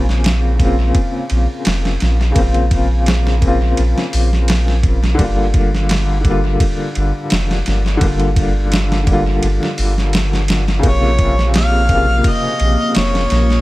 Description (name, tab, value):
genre	trip hop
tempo	85 BPM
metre	4/4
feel	straight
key	unclear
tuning	A4 = 440 Hz
part	felt-muted upright piano	accompaniment	0.0-13.6 s	C3 to F4	-19 LUFS	left 1 dB	tremolo, tape echo
part	soft dub sub bass	bass	0.0-13.6 s	F1 to Bb1	-16 LUFS	equal	none
part	dusty soul sampler-style drum kit	drums	0.1-13.6 s	hi-hat, kick drum, ride cymbal, snare drum	-18 LUFS	equal	overdrive, analog delay
part	string machine, cellos	sustained chords	10.8-13.6 s	Bb3 to Bb4	-23 LUFS	equal	ensemble chorus
part	mellow harmonica	melody	10.9-13.6 s	Db5 to F5	-18 LUFS	left 1 dB	tape echo
room	digital ambience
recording	echo-heavy mix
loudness	-13 LUFS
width	side -18 dB against mid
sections	0.0-13.6 A section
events	none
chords	0.0 Bbmadd9; 5.2 Gm7; 10.8 Bbmadd9